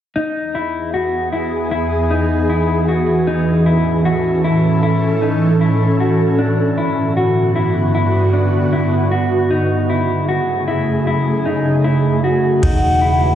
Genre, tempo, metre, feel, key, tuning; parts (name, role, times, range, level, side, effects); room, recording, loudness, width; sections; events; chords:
dream pop; 77 BPM; 4/4; straight; E major; A4 = 440 Hz
ethereal airy pad; sustained chords; 0.9-13.3 s; E2 to B4; -16 LUFS; right 1 dB; ensemble chorus, built-in reverb
mellow electric guitar; arpeggios; 0.2-13.3 s; D4 to F#4; -19 LUFS; left 2 dB; wide subtle chorus, diffuse ambient delay
hollow clarinet-like synth lead; melody; 12.6-13.3 s; F#5; -16 LUFS; equal; chorus, diffuse ambient delay
vintage muted picked electric bass; bass; 12.6-13.3 s; E1; -18 LUFS; equal
booming analog drum machine; drums; 12.6-12.8 s; crash cymbal, kick drum, toms; -19 LUFS; equal; overdrive
wet plate reverb, RT60 2.2 s; dreamy mix soaked in reverb; -14 LUFS; side -10 dB against mid
0.2-12.6 A section
0.2 E; 3.3 A; 6.4 Gmaj7; 9.5 F#madd9; 12.6 E